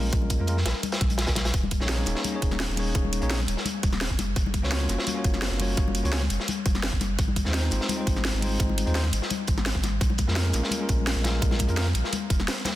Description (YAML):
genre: liquid drum and bass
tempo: 170 BPM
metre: 4/4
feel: straight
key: Bb minor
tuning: A4 = 440 Hz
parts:
  - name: bell-like tine electric piano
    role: accompaniment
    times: 0.0-11.9 s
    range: Ab3 to Db5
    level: -32 LUFS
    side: equal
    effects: vintage 12-bit sampler grit, low-pass filter, ping-pong delay
  - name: warm sub bass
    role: bass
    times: 0.0-12.5 s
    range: Eb1 to F2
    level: -27 LUFS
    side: equal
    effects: none
  - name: crunchy breakbeat drum kit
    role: drums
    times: 0.1-12.7 s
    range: hi-hat, snare drum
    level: -33 LUFS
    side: equal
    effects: high-pass filter on hats, studio reverb, high-pass filter on snare, high-pass filter on room
  - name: electronic kick drum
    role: drums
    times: 0.1-12.4 s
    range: none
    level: -26 LUFS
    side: equal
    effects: overdrive, studio reverb
  - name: garage drum kit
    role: drums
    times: 0.1-12.7 s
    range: hi-hat, snare drum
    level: -31 LUFS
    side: right 1 dB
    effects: overdrive, studio reverb
  - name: congas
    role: percussion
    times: 0.2-12.7 s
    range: none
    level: -33 LUFS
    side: left 7 dB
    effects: none
room: small room reverb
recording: dense, heavily limited modern master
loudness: -23 LUFS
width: side -14 dB against mid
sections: 0.0-12.8 A section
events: none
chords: 0.0 Bbm7; 1.5 Eb7sus4; 4.2 Gbmaj7; 7.2 Fm7/Ab; 10.0 Bbm7